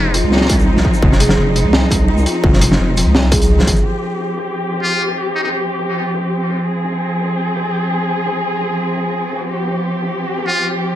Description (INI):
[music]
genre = half-time drum and bass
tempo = 170 BPM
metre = 4/4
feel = half-time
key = F minor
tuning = A4 = 442 Hz
[part]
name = trumpet with metal mute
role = melody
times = 0.0-0.1, 4.8-5.5, 10.5-10.7 s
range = Eb4 to F4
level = -22 LUFS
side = equal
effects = dub echo
[part]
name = dark symphonic cello section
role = sustained chords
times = 0.0-11.0 s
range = F3 to Ab4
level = -19 LUFS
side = equal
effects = sidechain pumping, low-pass filter
[part]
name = buzzing kalimba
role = arpeggios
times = 0.0-3.8 s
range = F3 to Ab4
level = -23 LUFS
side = left 1 dB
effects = ping-pong delay
[part]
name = deep soft wobble bass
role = bass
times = 0.0-3.8 s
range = F1 to C2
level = -15 LUFS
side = equal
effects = chorus
[part]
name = crunchy breakbeat drum kit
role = drums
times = 0.1-10.8 s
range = hi-hat, shaker, snare drum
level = -19 LUFS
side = equal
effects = low-pass filter on hats, low-pass filter on snare, low-pass filter on perc, low-pass filter on room
[part]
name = electronic kick drum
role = drums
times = 0.5-3.7 s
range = none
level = -15 LUFS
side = equal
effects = distortion
[sound]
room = light reverb, studio reverb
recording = none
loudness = -14 LUFS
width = side -12 dB against mid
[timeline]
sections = 0.0-3.8 A section; 3.8-11.0 B section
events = drop 0.0-3.8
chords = 0.0 F5